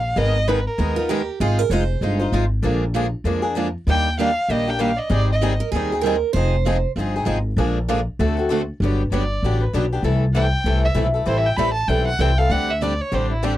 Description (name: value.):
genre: acoustic string swing (jazz manouche).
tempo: 195 BPM.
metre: 4/4.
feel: swing 60% on 8ths.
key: G major from 8.8 s.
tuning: A4 = 439 Hz.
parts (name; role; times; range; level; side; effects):
warm violin; melody; 0.0-1.2, 3.9-5.6, 9.1-13.6 s; E4 to B5; -24 LUFS; right 1 dB; none.
upright bass; bass; 0.0-13.6 s; F1 to F2; -21 LUFS; equal; none.
picked steel-string acoustic guitar; accompaniment; 0.2-13.5 s; C3 to C5; -26 LUFS; right 6 dB; none.
picked swing-style acoustic guitar; accompaniment; 0.2-13.5 s; C3 to C5; -24 LUFS; left 4 dB; none.
picked steel-string acoustic guitar; second line; 1.0-2.3, 5.6-6.9 s; F4 to C5; -24 LUFS; right 10 dB; none.
room: little or no reverb.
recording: dry, close 1970s-style studio recording.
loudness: -18 LUFS.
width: side -14 dB against mid.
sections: 0.0-8.8 A section; 8.8-13.6 B section.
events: violin solo 8.8-13.6.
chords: 0.2 Abmadd9; 1.4 Fm7; 2.6 Bb7; 3.9 Ebmaj7; 5.1 Abmaj7; 6.3 Fm7; 7.6 Bb7; 8.2 D7; 8.8 Gmaj7; 10.0 C6; 11.3 Am7; 12.5 D7sus4.